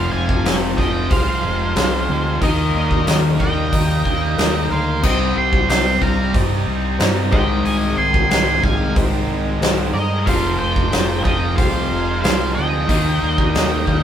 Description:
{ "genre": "classic rock", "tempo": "92 BPM", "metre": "4/4", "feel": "straight", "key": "unclear", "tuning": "A4 = 437 Hz", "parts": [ { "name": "octave-fuzz lead guitar", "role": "melody", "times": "0.0-14.0 s", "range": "Eb5 to C6", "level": "-24 LUFS", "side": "right 1 dB", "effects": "distortion" }, { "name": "octave-fuzz lead guitar", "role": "second line", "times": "0.0-14.0 s", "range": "Bb4 to Ab5", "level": "-26 LUFS", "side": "right 2 dB", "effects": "distortion" }, { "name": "dark grand piano", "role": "accompaniment", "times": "0.0-14.0 s", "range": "G4 to G5", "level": "-31 LUFS", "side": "left 3 dB", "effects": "none" }, { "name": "string machine, full ensemble", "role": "sustained chords", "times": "0.0-14.0 s", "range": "Ab3 to F5", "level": "-32 LUFS", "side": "equal", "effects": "none" }, { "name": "overdriven semi-hollow guitar", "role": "riff", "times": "0.0-14.0 s", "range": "F2 to Eb4", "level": "-24 LUFS", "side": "left 5 dB", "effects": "none" }, { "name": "raw garage guitar", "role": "riff", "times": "0.0-14.0 s", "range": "F2 to Eb4", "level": "-27 LUFS", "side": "right 5 dB", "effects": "overdrive, spring reverb" }, { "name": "tight distorted guitar", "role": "riff", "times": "0.0-14.0 s", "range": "F2 to Eb4", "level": "-27 LUFS", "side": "equal", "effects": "distortion" }, { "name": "overdriven fingered electric bass", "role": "bass", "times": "0.0-14.0 s", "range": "F1 to G2", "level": "-22 LUFS", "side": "equal", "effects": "none" }, { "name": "huge arena drum kit", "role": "drums", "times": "0.3-14.0 s", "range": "crash cymbal, hi-hat, kick drum, snare drum", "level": "-20 LUFS", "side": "equal", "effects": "none" } ], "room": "moderate stone room reverb, RT60 1.2 s", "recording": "band playing live in one room", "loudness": "-15 LUFS", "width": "side -9 dB against mid", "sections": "0.0-14.0 A section", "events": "none", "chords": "0.0 Fm; 2.4 Eb; 5.0 Cm; 7.3 Ab/C; 10.3 Fm; 12.9 Eb" }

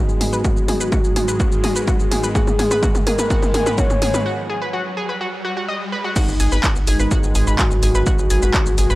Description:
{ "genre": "melodic techno", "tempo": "126 BPM", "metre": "4/4", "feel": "straight", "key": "G# minor", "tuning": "A4 = 439 Hz", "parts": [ { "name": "soft octave-layered synth lead", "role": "melody", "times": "0.0-9.0 s", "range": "D#4 to C#5", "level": "-23 LUFS", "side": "left 1 dB", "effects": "chorus, sidechain pumping, tape echo" }, { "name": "dark analog pad", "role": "sustained chords", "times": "0.0-9.0 s", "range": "G#3 to B4", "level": "-32 LUFS", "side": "left 1 dB", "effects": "none" }, { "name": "analog pluck", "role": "arpeggios", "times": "0.0-9.0 s", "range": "F#4 to B5", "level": "-26 LUFS", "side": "equal", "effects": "chorus, cassette tape, sidechain pumping, tape echo" }, { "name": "brassy analog pad", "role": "stabs", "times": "0.0-9.0 s", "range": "G#2 to G#3", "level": "-26 LUFS", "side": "right 1 dB", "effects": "chorus, vintage 12-bit sampler grit, sidechain pumping, tape echo" }, { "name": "riser", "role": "sound effects", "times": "3.9-6.2 s", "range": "none", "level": "-33 LUFS", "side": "right 1 dB", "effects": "none" }, { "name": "punchy analog drum machine", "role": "drums", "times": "0.1-9.0 s", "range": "crash cymbal, handclaps, hi-hat, shaker, toms", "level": "-23 LUFS", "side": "equal", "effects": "sidechain pumping on perc, sidechain pumping on toms, sidechain pumping on hats, sidechain pumping on cymbals" }, { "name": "electronic kick drum", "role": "drums", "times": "0.4-8.6 s", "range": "none", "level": "-19 LUFS", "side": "equal", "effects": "none" }, { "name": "swarming drone", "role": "drone", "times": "7.8-9.0 s", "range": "none", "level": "barely audible", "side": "none", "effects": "none" }, { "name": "tight sequencer bass", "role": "bass", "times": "6.3-9.0 s", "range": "G#1", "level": "-19 LUFS", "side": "equal", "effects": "sidechain pumping" } ], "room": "light reverb", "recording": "dry, gritty hardware recording, cassette tape", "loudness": "-16 LUFS", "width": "side -18 dB against mid", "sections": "0.0-6.2 A section; 6.2-9.0 B section", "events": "build-up 0.0-6.2; drum fill 0.0-4.3; filter sweep on synth pluck 0.0-6.2; filter sweep on soft synth lead 0.0-6.2; riser 3.9-6.2; break 4.3-6.2; drop 6.2-9.0", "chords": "0.0 G#m7" }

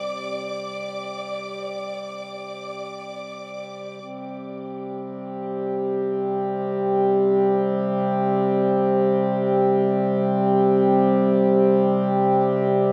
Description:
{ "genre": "ambient", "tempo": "free time", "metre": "none", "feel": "none", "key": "unclear", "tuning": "A4 = 440 Hz", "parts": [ { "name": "pedal harmonium", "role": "drone", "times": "0.0-12.9 s", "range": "C3 to G3", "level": "-23 LUFS", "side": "equal", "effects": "none" }, { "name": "clear studio violin section", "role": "texture", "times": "0.0-4.0 s", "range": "D5 to D6", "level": "-35 LUFS", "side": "equal", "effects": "none" } ], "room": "wet huge ambient reverb, RT60 8.2 s", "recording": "dark, warm production", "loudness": "-22 LUFS", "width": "mono", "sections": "0.0-4.0 A section; 4.0-12.9 B section", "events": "none", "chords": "0.0 Csus2" }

